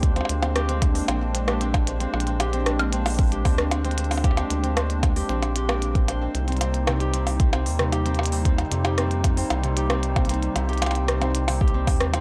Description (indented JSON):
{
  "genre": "IDM",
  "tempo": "114 BPM",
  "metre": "4/4",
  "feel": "straight",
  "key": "C minor",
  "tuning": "A4 = 440 Hz",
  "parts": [
    { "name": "hollow soft pad", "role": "sustained chords", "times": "0.0-12.2 s", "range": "C3 to Eb4", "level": "-33 LUFS", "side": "equal", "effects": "chorus" },
    { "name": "concert harp", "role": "arpeggios", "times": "0.0-12.2 s", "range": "C3 to C5", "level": "-31 LUFS", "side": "equal", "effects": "tape echo" },
    { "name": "rubbery square bass", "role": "bass", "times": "0.0-12.2 s", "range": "Bb1 to F2", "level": "-28 LUFS", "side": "equal", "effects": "none" },
    { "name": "electronic kick drum", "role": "drums", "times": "0.0-12.0 s", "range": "none", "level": "-24 LUFS", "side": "equal", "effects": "none" },
    { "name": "glitchy drum kit", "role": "drums", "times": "0.0-12.2 s", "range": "hi-hat, percussion blips, rim click", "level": "-30 LUFS", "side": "equal", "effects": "none" }
  ],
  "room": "little or no reverb",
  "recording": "dry, gritty hardware recording, transformer saturation, cassette tape",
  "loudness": "-23 LUFS",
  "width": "mono",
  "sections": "0.0-12.2 A section",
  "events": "none",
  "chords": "0.0 Bb7; 6.3 Cm7"
}